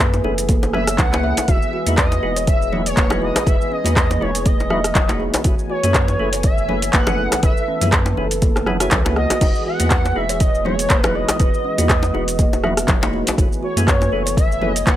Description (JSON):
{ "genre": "afro house", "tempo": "121 BPM", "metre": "4/4", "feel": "swing 56% on 16ths", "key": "F# dorian", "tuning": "A4 = 440 Hz", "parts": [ { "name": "warm analog pad", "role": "sustained chords", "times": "0.0-15.0 s", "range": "E3 to G#5", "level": "-29 LUFS", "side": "right 1 dB", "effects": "chorus, vintage 12-bit sampler grit, sidechain pumping" }, { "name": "kalimba", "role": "arpeggios", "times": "0.0-15.0 s", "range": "C#4 to F#5", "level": "-26 LUFS", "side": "right 1 dB", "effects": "sidechain pumping, analog delay" }, { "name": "percussive tonewheel organ", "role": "stabs", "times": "0.0-14.7 s", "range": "G#3 to C#5", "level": "-28 LUFS", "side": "left 2 dB", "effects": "chorus vibrato, slow rotary speaker, sidechain pumping, analog delay" }, { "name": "warm sub bass", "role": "bass", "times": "0.0-15.0 s", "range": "E1 to F#2", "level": "-24 LUFS", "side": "equal", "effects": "sidechain pumping" }, { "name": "afro-pop drum kit", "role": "drums", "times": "0.0-15.0 s", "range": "cabasa, crash cymbal, handclaps, hi-hat, rim click", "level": "-21 LUFS", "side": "equal", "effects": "small room ambience" }, { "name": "electronic kick drum", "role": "drums", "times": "0.0-15.0 s", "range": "none", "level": "-18 LUFS", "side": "equal", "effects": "small room ambience" }, { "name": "congas", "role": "percussion", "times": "0.1-15.0 s", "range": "none", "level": "-27 LUFS", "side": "right 2 dB", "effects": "none" }, { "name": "djembe", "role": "percussion", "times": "0.1-14.1 s", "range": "none", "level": "-25 LUFS", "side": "left 2 dB", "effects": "none" }, { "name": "expressive portamento lead", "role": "melody", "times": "0.7-15.0 s", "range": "C#5 to F#5", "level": "-23 LUFS", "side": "equal", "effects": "ensemble chorus, analog delay" } ], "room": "digital ambience", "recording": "dry, gritty hardware recording", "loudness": "-15 LUFS", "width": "side -12 dB against mid", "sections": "0.0-15.0 A section", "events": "drum fill 9.0-9.4", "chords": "0.0 F#m11; 1.5 Emaj7; 5.4 F#m11; 9.4 Emaj7; 13.4 F#m11" }